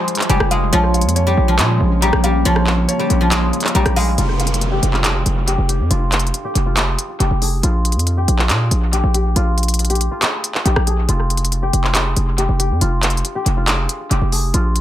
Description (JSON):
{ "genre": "hip hop, trap", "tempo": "139 BPM", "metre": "4/4", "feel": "half-time", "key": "F minor", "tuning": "A4 = 440 Hz", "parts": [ { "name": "guzheng", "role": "melody", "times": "0.0-14.8 s", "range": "F3 to Ab5", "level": "-21 LUFS", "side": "left 2 dB", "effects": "low-pass filter, analog delay" }, { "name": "dark concert grand piano", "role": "accompaniment", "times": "0.0-4.2 s", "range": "C5 to Bb5", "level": "-25 LUFS", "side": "equal", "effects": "low-pass filter, analog delay" }, { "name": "ethereal airy pad", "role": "sustained chords", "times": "0.0-4.1 s", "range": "Db3 to F4", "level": "-25 LUFS", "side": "equal", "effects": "ensemble chorus, built-in reverb" }, { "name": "trap drum kit", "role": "drums", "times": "0.1-14.8 s", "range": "handclaps, hi-hat, rim click", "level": "-21 LUFS", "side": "equal", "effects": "analog delay" }, { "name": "distorted 808-style bass", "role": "bass", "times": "0.3-14.8 s", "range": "F1 to Bb2", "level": "-17 LUFS", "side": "equal", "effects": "distortion" }, { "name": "downlifter", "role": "sound effects", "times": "4.2-7.6 s", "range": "none", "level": "-28 LUFS", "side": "right 1 dB", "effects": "none" } ], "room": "little or no reverb", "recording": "echo-heavy mix", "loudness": "-14 LUFS", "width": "side -12 dB against mid", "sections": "0.0-4.2 A section; 4.2-14.8 B section", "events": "none", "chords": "0.0 Fm; 0.7 Bbm; 4.2 Fm; 7.6 Bb5; 11.1 Fm" }